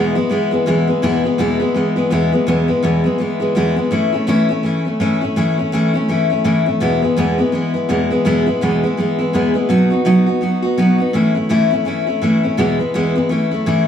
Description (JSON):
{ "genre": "rock", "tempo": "166 BPM", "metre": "4/4", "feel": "swing 60% on 8ths", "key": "E major", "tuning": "A4 = 438 Hz", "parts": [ { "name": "picked steel-string acoustic guitar", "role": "solo", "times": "0.0-13.9 s", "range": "E2 to F#4", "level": "-14 LUFS", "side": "left 1 dB", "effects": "tape echo" } ], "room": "moderate small room reverb, RT60 0.5 s", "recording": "small room ambience", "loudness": "-14 LUFS", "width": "side -8 dB against mid", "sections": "0.0-13.9 A section", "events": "none", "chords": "0.0 E; 3.9 A; 6.8 E; 9.7 B; 11.1 A; 12.6 E; 13.3 A" }